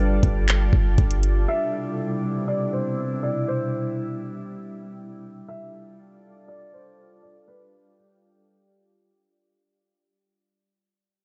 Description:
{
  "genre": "hip hop, atmospheric cloud-rap",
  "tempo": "120 BPM",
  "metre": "4/4",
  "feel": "half-time",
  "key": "unclear",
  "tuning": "A4 = 440 Hz",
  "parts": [
    { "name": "glassy FM pad", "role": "sustained chords", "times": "0.0-9.5 s", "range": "B2 to D5", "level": "-30 LUFS", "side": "equal", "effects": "ensemble chorus, built-in reverb, sidechain pumping, low-pass filter" },
    { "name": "clean 808-style bass", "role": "bass", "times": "0.0-1.5 s", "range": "G1", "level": "-23 LUFS", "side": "equal", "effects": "none" },
    { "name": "smooth R&B drum kit", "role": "drums", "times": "0.2-1.3 s", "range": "handclaps, hi-hat, kick drum", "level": "-25 LUFS", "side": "equal", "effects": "none" },
    { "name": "felt-muted upright piano", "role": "melody", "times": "1.5-7.9 s", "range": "B4 to E5", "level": "-32 LUFS", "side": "equal", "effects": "low-pass filter, tape echo" }
  ],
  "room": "little or no reverb",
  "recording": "dark, warm production, nothing above 8.0 kHz",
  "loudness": "-24 LUFS",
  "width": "mono",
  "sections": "0.0-9.5 A section",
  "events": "fade-out 0.0-9.5; filter sweep 0.0-9.5",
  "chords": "0.0 G7(no3); 1.5 Cmaj7; 5.5 G7(no3)",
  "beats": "0.48 0.98 | 1.48 1.98 2.48 2.98 | 3.48 3.98 4.48 4.98 | 5.48 5.98 6.48 6.98 | 7.48 7.98 8.48 8.98"
}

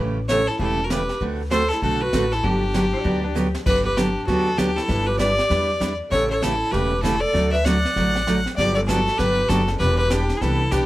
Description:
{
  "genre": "country, western swing",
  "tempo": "196 BPM",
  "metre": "4/4",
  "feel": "swing 61% on 8ths",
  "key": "G major",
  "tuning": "A4 = 440 Hz",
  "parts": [
    { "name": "picked steel-string acoustic guitar", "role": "accompaniment", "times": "0.0-10.8 s", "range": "C#3 to B4", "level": "-24 LUFS", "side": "right 2 dB", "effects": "none" },
    { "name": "upright bass", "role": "bass", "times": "0.0-10.9 s", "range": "E1 to E2", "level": "-25 LUFS", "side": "equal", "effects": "none" },
    { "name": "clear fiddle", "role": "melody", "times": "0.3-10.9 s", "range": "G4 to F#5", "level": "-23 LUFS", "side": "left 1 dB", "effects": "none" },
    { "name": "breathy clarinet", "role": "second line", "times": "0.3-10.9 s", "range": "D4 to D5", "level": "-28 LUFS", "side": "right 1 dB", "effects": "none" },
    { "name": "jazz brush drum kit", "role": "drums", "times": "0.3-10.9 s", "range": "brushed snare drum, crash cymbal, hi-hat, kick drum, snare drum", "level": "-29 LUFS", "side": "equal", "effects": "none" },
    { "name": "clean lap steel guitar", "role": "second line", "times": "2.9-3.6 s", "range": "D4 to D5", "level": "-32 LUFS", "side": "left 2 dB", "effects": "none" }
  ],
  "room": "light reverb",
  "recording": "none",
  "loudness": "-18 LUFS",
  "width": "side -16 dB against mid",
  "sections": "0.0-3.7 A section; 3.7-10.9 B section",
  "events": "drum fill 3.4-3.7",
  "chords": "0.0 A7; 1.2 D7; 2.4 Gmaj7; 4.9 Em7/G; 6.1 A7; 7.3 D; 8.6 Gmaj7; 9.8 Em7",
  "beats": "0.28 0.59 0.90 | 1.21 1.51 1.82 2.13 | 2.43 2.74 3.05 3.36 | 3.66 3.97 4.28 4.58 | 4.89 5.20 5.50 5.81 | 6.12 6.42 6.73 7.04 | 7.35 7.65 7.96 8.27 | 8.57 8.88 9.19 9.49 | 9.80 10.11 10.41 10.72"
}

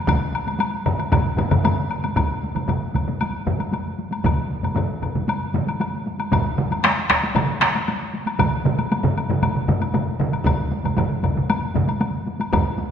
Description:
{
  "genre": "japanese traditional, taiko drum ensemble",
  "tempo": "116 BPM",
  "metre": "4/4",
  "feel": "straight",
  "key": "none",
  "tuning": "none",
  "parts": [
    { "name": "taiko ensemble", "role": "percussion", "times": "0.1-12.9 s", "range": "none", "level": "-26 LUFS", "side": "left 1 dB", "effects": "none" },
    { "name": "taiko ensemble", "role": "percussion", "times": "0.1-12.7 s", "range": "none", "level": "-24 LUFS", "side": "left 2 dB", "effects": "none" },
    { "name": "taiko ensemble", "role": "percussion", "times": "0.1-12.7 s", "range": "none", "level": "-25 LUFS", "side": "right 4 dB", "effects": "none" },
    { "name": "taiko ensemble", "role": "percussion", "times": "0.1-12.7 s", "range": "none", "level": "-27 LUFS", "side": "right 1 dB", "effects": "none" },
    { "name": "woodblock", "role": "percussion", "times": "0.1-12.7 s", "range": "none", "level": "-28 LUFS", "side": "left 3 dB", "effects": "none" }
  ],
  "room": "wet concert hall reverb, RT60 2.2 s",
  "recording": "minimal, uncompressed stereo recording",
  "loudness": "-19 LUFS",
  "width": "side -8 dB against mid",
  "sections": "0.0-2.2 A section; 2.2-12.9 B section",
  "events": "none",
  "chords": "none",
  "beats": "| 0.08 0.60 1.13 1.65 | 2.17 2.69 3.21 3.73 | 4.25 4.77 5.29 5.81 | 6.33 6.85 7.36 7.88 | 8.40 8.92 9.43 9.95 | 10.47 10.98 11.50 12.02 | 12.53"
}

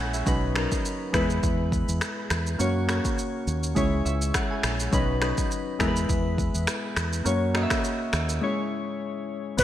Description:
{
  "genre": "afrobeats",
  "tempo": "103 BPM",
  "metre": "4/4",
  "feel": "swing 55% on 16ths",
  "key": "unclear",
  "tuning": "A4 = 440 Hz",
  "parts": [
    { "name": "soft electric-piano-like synth keys", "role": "accompaniment", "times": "0.0-9.6 s", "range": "F#3 to G#5", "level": "-27 LUFS", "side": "left 1 dB", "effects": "chorus" },
    { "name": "deep dub fingered electric bass", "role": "bass", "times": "0.0-9.6 s", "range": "A#1 to F#2", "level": "-28 LUFS", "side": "equal", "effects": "none" },
    { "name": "afro-pop drum kit", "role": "drums", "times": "0.1-9.6 s", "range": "crash cymbal, finger snaps, kick drum, rim click, shaker", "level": "-28 LUFS", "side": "equal", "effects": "gated reverb" },
    { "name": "warm velvety synth lead", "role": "melody", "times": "9.6 s", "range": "B4", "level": "-20 LUFS", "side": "equal", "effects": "chorus" }
  ],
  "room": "moderate plate reverb, RT60 2.8 s",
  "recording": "bright 1980s-style digital production",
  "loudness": "-23 LUFS",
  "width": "side -12 dB against mid",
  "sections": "0.0-9.6 A section",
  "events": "break 0.0, 8.4-9.6; synth keys fill 3.8-4.9",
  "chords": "0.3 Badd9; 1.1 E; 2.6 F#; 3.8 C#m; 4.9 Badd9; 5.8 E; 7.3 F#; 8.4 C#m",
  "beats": "| 0.27 0.85 1.43 2.02 | 2.60 3.18 3.76 4.34 | 4.93 5.51 6.09 6.67 | 7.26 7.84 8.42 9.01 | 9.59"
}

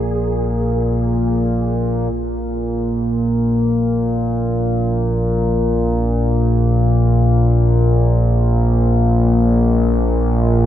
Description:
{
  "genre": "dark ambient drone",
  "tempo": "free time",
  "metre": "none",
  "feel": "none",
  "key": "unclear",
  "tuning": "A4 = 438 Hz",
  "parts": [
    { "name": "mellow horn-like synth lead", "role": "melody", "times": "0.0-0.8 s", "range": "Ab4", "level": "-28 LUFS", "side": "right 1 dB", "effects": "ensemble chorus, tape echo" },
    { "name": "analog drone", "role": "drone", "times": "0.0-10.7 s", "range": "Bb1 to Bb2", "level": "-14 LUFS", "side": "equal", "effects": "chorus" }
  ],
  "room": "moderate huge ambient reverb, RT60 8.5 s",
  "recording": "none",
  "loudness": "-14 LUFS",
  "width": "side -11 dB against mid",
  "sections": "0.0-2.1 A section; 2.1-10.7 B section",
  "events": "none",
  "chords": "none",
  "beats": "free time"
}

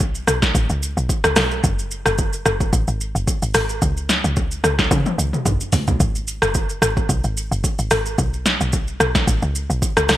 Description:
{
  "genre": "amapiano",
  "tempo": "110 BPM",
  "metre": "4/4",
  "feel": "swing 55% on 16ths",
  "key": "unclear",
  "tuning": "A4 = 443 Hz",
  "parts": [
    { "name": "woody log drum bass", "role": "bass", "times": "0.0-10.2 s", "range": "F#1 to C#3", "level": "-22 LUFS", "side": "equal", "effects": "none" },
    { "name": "deep house drum kit", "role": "drums", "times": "0.0-10.2 s", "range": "hi-hat, kick drum, rim click, shaker, snare drum, toms", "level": "-18 LUFS", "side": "equal", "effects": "overdrive, gated reverb" }
  ],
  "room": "light reverb",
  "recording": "bright 1980s-style digital production",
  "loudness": "-17 LUFS",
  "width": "side -14 dB against mid",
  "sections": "0.0-10.2 A section",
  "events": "drum fill 4.9-6.0",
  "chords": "none",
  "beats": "0.00 0.55 1.09 | 1.64 2.18 2.73 3.27 | 3.82 4.37 4.91 5.46 | 6.00 6.55 7.09 7.64 | 8.18 8.73 9.27 9.82"
}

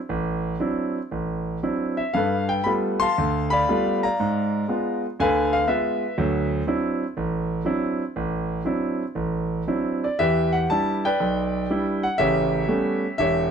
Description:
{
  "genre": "solo jazz",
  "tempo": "119 BPM",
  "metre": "4/4",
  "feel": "swing 69% on 8ths, rubato",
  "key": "unclear",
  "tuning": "A4 = 440 Hz",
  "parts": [
    { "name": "clear concert grand piano", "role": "solo", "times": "0.1-13.5 s", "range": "E1 to C6", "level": "-21 LUFS", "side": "equal", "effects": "none" }
  ],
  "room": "light reverb",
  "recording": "close, detailed microphones",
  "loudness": "-21 LUFS",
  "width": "side -7 dB against mid",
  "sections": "0.0-13.5 A section",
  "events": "none",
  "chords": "0.0 D9; 2.1 G9; 4.2 G#dim7; 6.2 D9; 10.2 Em7; 12.2 A9",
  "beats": "| 0.10 0.61 1.12 1.63 | 2.14 2.66 3.17 3.68 | 4.19 4.69 5.19 5.68 | 6.18 6.67 7.17 7.66 | 8.16 8.66 9.16 9.68 | 10.19 10.70 11.21 11.71 | 12.20 12.69 13.19"
}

